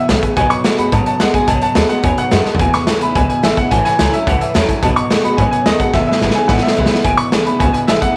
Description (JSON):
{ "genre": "rockabilly", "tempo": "216 BPM", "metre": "4/4", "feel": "straight", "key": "E major", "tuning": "A4 = 440 Hz", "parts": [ { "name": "bright upright piano", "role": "melody", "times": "0.0-8.2 s", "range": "D#5 to C#6", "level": "-20 LUFS", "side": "equal", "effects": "none" }, { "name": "picked steel-string acoustic guitar", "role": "accompaniment", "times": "0.0-8.2 s", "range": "E2 to F#4", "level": "-26 LUFS", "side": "equal", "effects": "none" }, { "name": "tack piano", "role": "accompaniment", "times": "0.0-8.1 s", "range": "B4 to B5", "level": "-29 LUFS", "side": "equal", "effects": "none" }, { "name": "electric guitar through a small old amp", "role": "riff", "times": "0.0-8.1 s", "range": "E2 to G#3", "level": "-22 LUFS", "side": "equal", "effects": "ensemble chorus" }, { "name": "upright bass", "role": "bass", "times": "0.1-8.1 s", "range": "E1 to G#2", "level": "-23 LUFS", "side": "equal", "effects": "none" }, { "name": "raw garage drum kit", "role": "drums", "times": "0.1-8.1 s", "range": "hi-hat, kick drum, snare drum, toms", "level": "-19 LUFS", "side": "equal", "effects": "none" } ], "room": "light reverb, small room reverb", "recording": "none", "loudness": "-14 LUFS", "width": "mono", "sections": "0.0-7.0 A section; 7.0-8.2 A section", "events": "drum fill 2.5, 5.9-7.0", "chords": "0.4 B7; 2.6 E; 3.7 A; 4.8 B7; 5.9 E" }